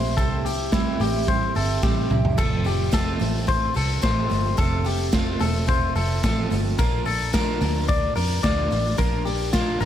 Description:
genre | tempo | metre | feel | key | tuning
jangly indie pop | 109 BPM | 4/4 | straight | F major | A4 = 444 Hz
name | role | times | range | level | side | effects
picked twelve-string acoustic guitar | accompaniment | 0.0-9.9 s | F2 to G4 | -28 LUFS | right 8 dB | none
clean electric guitar | arpeggios | 0.0-9.9 s | E4 to D5 | -26 LUFS | left 5 dB | tape echo
vintage muted fingered electric bass | bass | 0.0-9.9 s | E1 to F2 | -25 LUFS | equal | none
raw garage drum kit | drums | 0.2-9.9 s | crash cymbal, hi-hat, kick drum, snare drum, toms | -24 LUFS | equal | tape echo
room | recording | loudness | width
small room ambience | echo-heavy mix | -20 LUFS | side -10 dB against mid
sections
0.0-2.4 A section; 2.4-9.9 B section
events
drum fill 1.8-2.4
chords
0.0 C; 2.4 F; 6.8 Bb

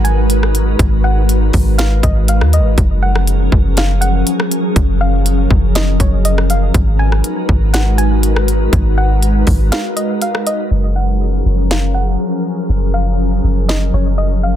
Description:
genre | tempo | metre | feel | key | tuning
hip hop, atmospheric cloud-rap | 121 BPM | 4/4 | half-time | unclear | A4 = 439 Hz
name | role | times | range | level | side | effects
soft round pluck | melody | 0.0-14.6 s | C#5 to G#5 | -23 LUFS | equal | chorus, low-pass filter, digital delay
glassy FM pad | sustained chords | 0.0-14.6 s | E#3 to B4 | -18 LUFS | left 1 dB | ensemble chorus, built-in reverb, sidechain pumping, low-pass filter
soft 808-style bass | bass | 0.0-14.6 s | F#1 to D#2 | -13 LUFS | equal | none
trap drum kit | drums | 0.0-13.8 s | hi-hat, kick drum, rim click, snare drum | -16 LUFS | equal | none
room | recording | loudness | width
little or no reverb | dense, heavily limited modern master | -12 LUFS | side -11 dB against mid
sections
0.0-10.7 A section; 10.7-14.6 B section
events
break 9.7-10.7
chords
0.0 G#m7; 2.8 F#maj7; 6.7 G#m7; 10.7 F#maj7

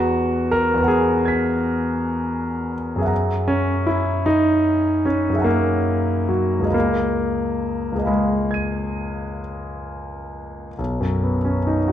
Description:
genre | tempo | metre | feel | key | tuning
classical, impressionist solo piano | 42-55 BPM (dotted quarters) | 9/8 | rubato | unclear | A4 = 440 Hz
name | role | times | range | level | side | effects
clear concert grand piano | solo | 0.0-11.9 s | B1 to D#7 | -19 LUFS | equal | none
room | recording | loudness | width
wet recital hall reverb, RT60 1.5 s | dark, warm production, nothing above 10.7 kHz | -18 LUFS | side -10 dB against mid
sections
0.0-10.8 A section; 10.8-11.9 B section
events
none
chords
0.0 G#m9/E; 3.1 F#9; 6.7 C#9; 10.8 Badd9

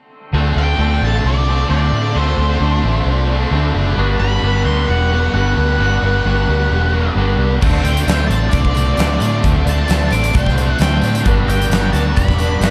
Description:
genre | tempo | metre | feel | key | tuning
rock, shoegaze and dream pop | 132 BPM | 4/4 | straight | D mixolydian | A4 = 440 Hz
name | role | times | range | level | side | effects
overdriven electric guitar | riff | 0.3-12.7 s | G2 to D4 | -26 LUFS | equal | none
raw garage guitar | riff | 0.3-12.7 s | D3 to C5 | -27 LUFS | equal | overdrive, ensemble chorus
twangy electric guitar | riff | 0.3-12.7 s | D3 to F#4 | -25 LUFS | equal | reverse reverb
vintage muted fingered electric bass | bass | 0.3-12.7 s | E1 to A2 | -19 LUFS | equal | none
ensemble organ-string | sustained chords | 0.4-12.7 s | D5 to C6 | -32 LUFS | equal | none
octave-fuzz lead guitar | melody | 0.6-12.7 s | C5 to D6 | -25 LUFS | equal | distortion, digital delay
huge arena drum kit | drums | 7.6-12.7 s | crash cymbal, hi-hat, kick drum, snare drum | -20 LUFS | equal | none
tambourine | percussion | 7.6-12.7 s | none | -40 LUFS | equal | none
room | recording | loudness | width
small room reverb | dark, warm production | -15 LUFS | mono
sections
0.3-12.7 A section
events
none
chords
0.3 D7(no3); 4.0 Gmaj7; 7.6 D7sus4; 11.3 Gmaj7

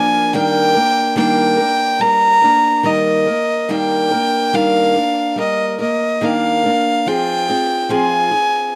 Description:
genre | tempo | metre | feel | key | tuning
acoustic folk duo or small band | 71 BPM | 4/4 | straight | unclear | A4 = 441 Hz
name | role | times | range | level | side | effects
rich fiddle | melody | 0.0-8.8 s | Eb5 to Bb5 | -18 LUFS | equal | none
picked steel-string acoustic guitar | accompaniment | 0.0-8.7 s | Eb3 to Bb4 | -20 LUFS | equal | none
room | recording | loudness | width
little or no reverb | dry, close 1970s-style studio recording | -16 LUFS | mono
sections
0.0-8.8 A section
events
none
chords
0.3 Ebmaj7; 7.1 Fm

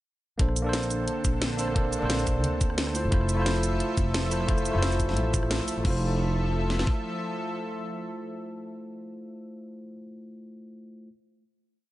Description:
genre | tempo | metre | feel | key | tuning
liquid drum and bass | 176 BPM | 4/4 | swing 54% on 16ths | F major | A4 = 442 Hz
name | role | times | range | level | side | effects
tine electric piano | accompaniment | 0.4-11.1 s | A3 to C5 | -31 LUFS | equal | digital delay
lush unison pad | sustained chords | 0.4-9.3 s | D3 to E5 | -34 LUFS | equal | chorus, vintage 12-bit sampler grit, sidechain pumping
upright bass | bass | 0.4-6.8 s | F1 to D2 | -28 LUFS | equal | tube saturation
drum and bass drum kit | drums | 0.4-7.0 s | kick drum, snare drum | -26 LUFS | equal | none
drum and bass drum kit | drums | 0.4-5.9 s | crash cymbal, hi-hat, rim click, shaker, snare drum | -32 LUFS | equal | none
room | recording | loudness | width
light reverb | nothing above 10.6 kHz | -24 LUFS | side -16 dB against mid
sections
0.4-5.8 drop; 5.8-8.6 final chord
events
drop 0.4-5.8; band accent 5.5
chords
0.4 Bbmaj9; 3.0 Fmaj7

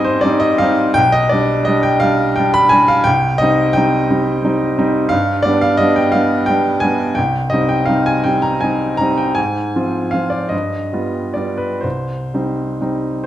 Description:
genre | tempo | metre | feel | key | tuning
classical, romantic nocturne for solo piano | 40-60 BPM (dotted quarters) | 12/8 | rubato | C minor | A4 = 441 Hz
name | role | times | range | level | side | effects
clear baby grand piano | solo | 0.0-13.3 s | B1 to B5 | -13 LUFS | equal | none
room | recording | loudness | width
wet recital hall reverb, RT60 1.3 s | dark, warm production | -13 LUFS | side -12 dB against mid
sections
0.0-13.3 A section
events
none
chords
0.0 Abmaj7; 1.0 G/B; 3.1 Cm; 5.1 G; 7.2 Cm; 9.4 Fm/Ab; 10.5 G7; 11.8 Cm

